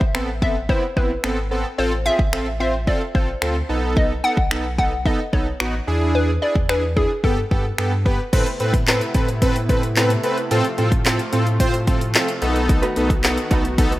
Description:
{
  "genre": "dance-pop",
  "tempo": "110 BPM",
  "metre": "4/4",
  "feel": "straight",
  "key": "A harmonic minor",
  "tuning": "A4 = 440 Hz",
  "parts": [
    { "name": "hollow square pluck", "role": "melody", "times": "0.0-8.0 s", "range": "G#4 to F#5", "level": "-24 LUFS", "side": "left 1 dB", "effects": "chorus, analog delay" },
    { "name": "sub bass with octave", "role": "bass", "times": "0.0-14.0 s", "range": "G#1 to A2", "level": "-24 LUFS", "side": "equal", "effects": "sidechain pumping" },
    { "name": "deep house drum kit", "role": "drums", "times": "0.0-14.0 s", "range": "crash cymbal, finger snaps, handclaps, hi-hat, kick drum, snare drum", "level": "-20 LUFS", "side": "equal", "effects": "none" },
    { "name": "big bright polysynth", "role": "accompaniment", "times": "0.1-13.9 s", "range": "B3 to C5", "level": "-22 LUFS", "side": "right 1 dB", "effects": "chorus" },
    { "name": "soft supersaw", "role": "sustained chords", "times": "8.3-14.0 s", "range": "C3 to F#4", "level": "-28 LUFS", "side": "equal", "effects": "sidechain pumping" },
    { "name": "direct-recorded clean electric guitar", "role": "riff", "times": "12.7-14.0 s", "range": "A3 to B4", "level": "-27 LUFS", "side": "right 3 dB", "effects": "ensemble chorus" }
  ],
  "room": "light reverb, digital ambience",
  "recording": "rough home demo mix",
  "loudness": "-17 LUFS",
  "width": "side -16 dB against mid",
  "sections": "0.0-8.3 A section; 8.3-14.0 B section",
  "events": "none",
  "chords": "0.0 Amadd9; 1.8 F/A; 3.7 B7; 5.9 E7; 7.2 Gadd9; 8.3 Amadd9; 10.5 F/A; 12.4 B7"
}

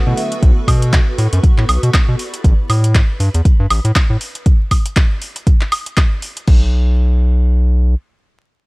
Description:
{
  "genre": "deep house",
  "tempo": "119 BPM",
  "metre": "4/4",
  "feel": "swing 57% on 16ths",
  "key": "unclear",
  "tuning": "A4 = 439 Hz",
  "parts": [
    { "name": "hollow soft pad", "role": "sustained chords", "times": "0.0-2.4 s", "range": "B3 to C#6", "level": "-27 LUFS", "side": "right 2 dB", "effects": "ensemble chorus, sidechain pumping" },
    { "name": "string machine, violins", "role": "texture", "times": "0.0-4.5 s", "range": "B4 to B5", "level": "-39 LUFS", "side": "equal", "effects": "none" },
    { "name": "round analog bass", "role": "bass", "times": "0.1-7.9 s", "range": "A1 to B2", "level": "-13 LUFS", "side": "equal", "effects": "none" },
    { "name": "deep house drum kit", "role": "drums", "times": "0.2-6.6 s", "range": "crash cymbal, handclaps, hi-hat, woodblock", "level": "-20 LUFS", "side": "equal", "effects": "none" },
    { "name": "electronic kick drum", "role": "drums", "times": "0.4-6.6 s", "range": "none", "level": "-12 LUFS", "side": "equal", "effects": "none" }
  ],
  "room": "little or no reverb",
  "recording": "dry, gritty hardware recording, vinyl crackle",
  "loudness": "-12 LUFS",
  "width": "side -25 dB against mid",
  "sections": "0.0-6.5 A section; 6.5-8.7 B section",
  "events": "drop 0.0-6.5",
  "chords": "0.0 B7sus2; 2.2 A7sus2; 6.5 N.C."
}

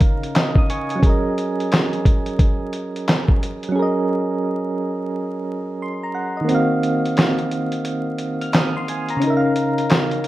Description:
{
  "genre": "lo-fi hip hop",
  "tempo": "88 BPM",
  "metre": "4/4",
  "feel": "swing 64% on 16ths",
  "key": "Eb dorian",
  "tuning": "A4 = 440 Hz",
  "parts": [
    { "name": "soft electric-piano-like synth keys", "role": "accompaniment", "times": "0.0-10.3 s", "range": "Db3 to F6", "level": "-20 LUFS", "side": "right 1 dB", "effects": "chorus, tremolo" },
    { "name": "lo-fi sampler-style drum kit", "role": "drums", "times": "0.0-10.3 s", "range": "handclaps, hi-hat, kick drum, snare drum", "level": "-18 LUFS", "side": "equal", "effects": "none" }
  ],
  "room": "moderate studio reverb, RT60 0.6 s",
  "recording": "rough home demo mix, vinyl crackle",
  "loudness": "-18 LUFS",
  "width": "side -16 dB against mid",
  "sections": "0.0-6.5 A section; 6.5-10.3 A section",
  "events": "break 3.8-6.5; kick muted 6.5-10.3",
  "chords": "0.0 Db69; 1.0 Gb69; 6.5 Ebm69; 9.2 Db69"
}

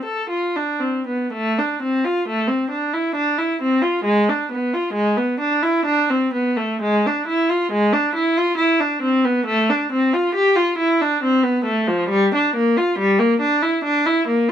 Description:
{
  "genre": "classical, baroque-style suite movement for unaccompanied viola",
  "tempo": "67 BPM",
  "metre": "3/4",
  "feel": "uneven beats, rubato",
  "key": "A minor",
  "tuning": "A4 = 440 Hz",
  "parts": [
    { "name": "rich viola", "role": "solo", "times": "0.0-14.5 s", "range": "F3 to A4", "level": "-17 LUFS", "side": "equal", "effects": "none" }
  ],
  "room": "light reverb",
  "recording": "dark, warm production",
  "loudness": "-17 LUFS",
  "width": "side -9 dB against mid",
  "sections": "0.0-1.3 A section; 1.3-14.5 B section",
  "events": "none",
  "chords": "none"
}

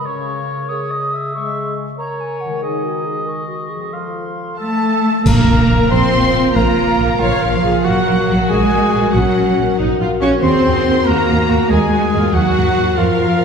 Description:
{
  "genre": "cinematic, heroic adventure film score",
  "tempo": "93 BPM (dotted quarters)",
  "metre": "12/8",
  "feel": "straight",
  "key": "Bb minor from 5.3 s",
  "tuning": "A4 = 441 Hz",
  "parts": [
    { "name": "mellow clarinet", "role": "second line", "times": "0.0-13.4 s", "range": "F4 to Db5", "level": "-26 LUFS", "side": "left 2 dB", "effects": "none" },
    { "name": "silver concert flute", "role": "second line", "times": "0.0-13.4 s", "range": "F5 to D#6", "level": "-25 LUFS", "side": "equal", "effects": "none" },
    { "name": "warm oboe", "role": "second line", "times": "0.0-13.4 s", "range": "F4 to F5", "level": "-26 LUFS", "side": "right 2 dB", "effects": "none" },
    { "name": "concert harp", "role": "arpeggios", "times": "0.0-13.4 s", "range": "Bb2 to E5", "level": "-25 LUFS", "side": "left 4 dB", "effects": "none" },
    { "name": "mellow French horn section", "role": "sustained chords", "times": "0.1-13.4 s", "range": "C#3 to Bb4", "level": "-24 LUFS", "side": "left 4 dB", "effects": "none" },
    { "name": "warm symphonic violin section", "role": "melody", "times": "4.6-13.4 s", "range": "F5 to Db6", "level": "-26 LUFS", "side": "left 2 dB", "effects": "none" },
    { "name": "rich symphonic violin section", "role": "second line", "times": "4.6-13.4 s", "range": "F5 to Db6", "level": "-27 LUFS", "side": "left 2 dB", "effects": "none" },
    { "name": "dark trumpet", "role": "stabs", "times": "4.6-13.4 s", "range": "F4 to Db5", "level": "-23 LUFS", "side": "right 2 dB", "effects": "none" },
    { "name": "warm symphonic cello section", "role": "bass", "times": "4.6-13.4 s", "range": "F3 to Db4", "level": "-17 LUFS", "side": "right 2 dB", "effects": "none" },
    { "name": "rich symphonic double bass section", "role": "bass", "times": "5.3-13.4 s", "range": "Bb1 to F2", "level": "-19 LUFS", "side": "right 2 dB", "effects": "none" },
    { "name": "clash cymbals and concert bass drum", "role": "percussion", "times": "5.3-6.1 s", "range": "none", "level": "-19 LUFS", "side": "equal", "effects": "none" },
    { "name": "timpani", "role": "percussion", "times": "5.3-5.9 s", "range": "Bb2", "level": "-20 LUFS", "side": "equal", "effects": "none" },
    { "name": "rich symphonic viola section", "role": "accompaniment", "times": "6.6-13.4 s", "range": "Db4 to Db5", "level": "-23 LUFS", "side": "right 1 dB", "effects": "none" }
  ],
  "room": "wet scoring stage reverb, RT60 1.8 s",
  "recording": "heard from further back in the room, faint mains hum",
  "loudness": "-13 LUFS",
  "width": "side -6 dB against mid",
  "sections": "0.0-5.3 A section; 5.3-13.4 B section",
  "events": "band accent 5.3-5.7",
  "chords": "0.1 C#m; 2.6 D#sus4; 3.9 F7; 5.3 Bbm; 7.8 Gb/Bb; 10.4 Ebm"
}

